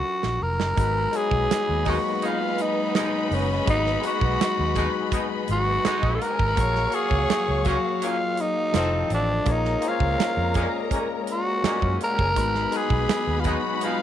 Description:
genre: lush 1970s-style soul.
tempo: 83 BPM.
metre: 4/4.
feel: straight.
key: G# dorian.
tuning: A4 = 440 Hz.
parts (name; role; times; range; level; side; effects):
growling tenor saxophone; melody; 0.0-14.0 s; C#4 to A#4; -25 LUFS; right 1 dB; none.
barky tine electric piano; accompaniment; 0.0-14.0 s; F3 to E#5; -30 LUFS; left 12 dB; overdrive.
vintage muted fingered electric bass; bass; 0.2-13.6 s; E#1 to F#2; -26 LUFS; equal; none.
modern studio drum kit; drums; 0.2-14.0 s; hi-hat, kick drum, snare drum; -27 LUFS; right 4 dB; none.
dark studio string section; second line; 0.8-14.0 s; B3 to C#6; -32 LUFS; left 1 dB; tape echo.
warm symphonic string section; sustained chords; 0.8-14.0 s; Eb3 to E#5; -36 LUFS; equal; none.
clear horn section; stabs; 1.9-14.0 s; A2 to D#4; -31 LUFS; right 1 dB; none.
room: small room ambience.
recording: 1960s-style stereo.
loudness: -21 LUFS.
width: side -10 dB against mid.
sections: 0.8-14.0 A section.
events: drum fill 0.0-0.8.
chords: 0.0 F#maj7; 0.8 G#m7; 6.6 F#maj7/A#; 8.7 F7; 9.5 A#m7; 12.4 G#m7.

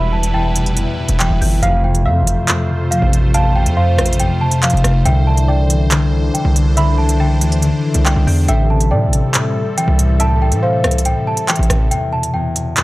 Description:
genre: hip hop, drill.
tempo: 140 BPM.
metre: 4/4.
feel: half-time.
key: E phrygian.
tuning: A4 = 440 Hz.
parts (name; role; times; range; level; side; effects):
small celesta; melody; 0.0-12.8 s; F5 to B5; -22 LUFS; right 1 dB; none.
soft round pluck; second line; 0.0-11.9 s; C5 to A5; -25 LUFS; right 1 dB; chorus, tape echo.
concert harp; accompaniment; 0.0-12.8 s; E2 to G3; -18 LUFS; left 2 dB; none.
sweeping resonant pad; sustained chords; 0.0-11.9 s; E3 to C5; -26 LUFS; right 1 dB; chorus.
distorted 808-style bass; bass; 0.0-11.9 s; E1 to A2; -15 LUFS; equal; distortion.
drill drum kit; drums; 0.2-12.8 s; handclaps, hi-hat, rim click; -19 LUFS; right 1 dB; none.
room: digital ambience.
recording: dry, gritty hardware recording, transformer saturation.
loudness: -12 LUFS.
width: side -19 dB against mid.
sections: 0.0-11.9 A section.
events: break 11.9-12.8.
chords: 0.0 Em; 1.6 F; 5.1 Cadd9; 8.5 Am7; 11.9 Em.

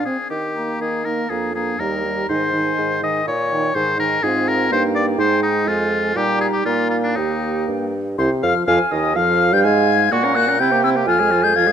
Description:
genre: quick classical-period movement for wind quintet.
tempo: 123 BPM.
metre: 2/4.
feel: rubato.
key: Eb major, F minor from 8.2 s.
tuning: A4 = 441 Hz.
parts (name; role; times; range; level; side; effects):
mellow hollow silver concert flute; melody; 0.0-11.7 s; F5 to Ab6; -23 LUFS; left 9 dB; none.
clear oboe; second line; 0.0-11.7 s; D4 to Ab5; -21 LUFS; left 2 dB; none.
clear French horn; accompaniment; 0.0-11.7 s; C3 to Db4; -23 LUFS; right 1 dB; none.
mellow clarinet; accompaniment; 0.0-11.7 s; D4 to Ab5; -25 LUFS; right 10 dB; none.
mellow bassoon; bass; 0.0-11.7 s; C2 to Eb3; -22 LUFS; right 2 dB; none.
room: light reverb.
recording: close, detailed microphones.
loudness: -16 LUFS.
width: side -8 dB against mid.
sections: 0.3-8.2 A section; 8.2-11.7 B section.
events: none.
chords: 0.3 Eb; 1.3 Bb7/F; 1.8 Eb; 2.3 Ab; 3.3 Eb7/Bb; 3.8 Ab; 4.2 Bb5/Ab; 4.7 Eb/G; 5.2 Ab; 5.7 Fm; 6.2 Eb/Bb; 6.7 Bb5; 7.2 Eb; 8.2 F5/C; 8.7 Ab5; 9.2 Fmadd9; 10.1 Gb/Bb; 10.6 C7; 11.1 Fm.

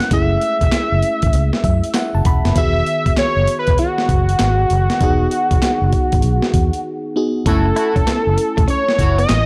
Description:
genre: R&B, new jack swing.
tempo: 98 BPM.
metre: 4/4.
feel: swing 64% on 16ths.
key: F# dorian.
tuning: A4 = 440 Hz.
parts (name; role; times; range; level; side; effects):
octave-doubled lead; melody; 0.0-9.5 s; F#4 to E5; -21 LUFS; equal; chorus.
FM electric piano; accompaniment; 0.0-9.5 s; D#3 to B5; -25 LUFS; equal; chorus, phaser.
breakbeat sampler-style drum kit; drums; 0.0-9.5 s; handclaps, hi-hat, kick drum, snare drum; -21 LUFS; equal; none.
vintage muted fingered electric bass; bass; 0.1-9.5 s; E1 to F#2; -20 LUFS; equal; none.
clear horn section; stabs; 7.5-9.2 s; A3 to F#4; -29 LUFS; equal; none.
direct-recorded clean electric guitar; riff; 7.7-9.3 s; A3 to E4; -28 LUFS; equal; analog chorus.
room: digital ambience.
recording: dark, warm production.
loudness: -16 LUFS.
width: mono.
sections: 0.0-7.5 A section; 7.5-9.5 B section.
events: FM electric piano fill 1.3-2.6; break 6.8-7.5.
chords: 0.0 F#m7; 2.6 Emaj9; 7.5 F#m7.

